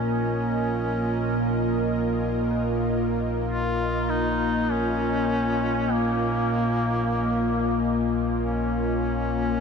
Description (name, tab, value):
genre	ambient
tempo	free time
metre	none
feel	none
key	Bb minor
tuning	A4 = 440 Hz
part	clear duduk	melody	0.0-9.6 s	Bb3 to F4	-28 LUFS	equal	tape echo
part	dark analog pad	sustained chords	0.0-9.6 s	Bb3 to Eb5	-26 LUFS	equal	chorus
part	analog drone	drone	0.0-9.6 s	Bb1 to Bb2	-28 LUFS	left 1 dB	chorus
part	dark detuned synth bell	arpeggios	2.5-9.6 s	none	barely audible	none	none
room	wet huge ambient reverb, RT60 7.8 s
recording	none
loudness	-22 LUFS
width	side -6 dB against mid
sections	0.0-9.6 A section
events	none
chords	0.0 Bbm